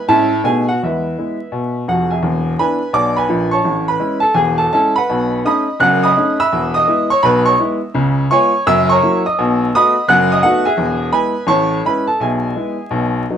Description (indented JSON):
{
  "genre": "jazz, stride piano",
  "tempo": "168 BPM",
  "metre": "4/4",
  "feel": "swing 63% on 8ths",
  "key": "E major",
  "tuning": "A4 = 436 Hz",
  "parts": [
    { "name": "bright upright piano", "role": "solo", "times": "0.0-13.4 s", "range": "E1 to F#6", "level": "-13 LUFS", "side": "equal", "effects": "none" }
  ],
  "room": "moderate studio reverb, RT60 0.8 s",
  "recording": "vinyl crackle",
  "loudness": "-13 LUFS",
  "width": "side -8 dB against mid",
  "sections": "0.0-2.2 A section; 2.2-13.4 B section",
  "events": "none",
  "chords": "0.1 Amaj7; 0.5 B7; 0.8 E; 2.2 E7; 3.7 Amaj7; 5.1 B9; 6.5 E; 7.9 C#7; 8.7 F#7; 9.4 B7; 10.1 B7/F#; 10.8 E; 11.5 Amaj7; 12.2 E/B"
}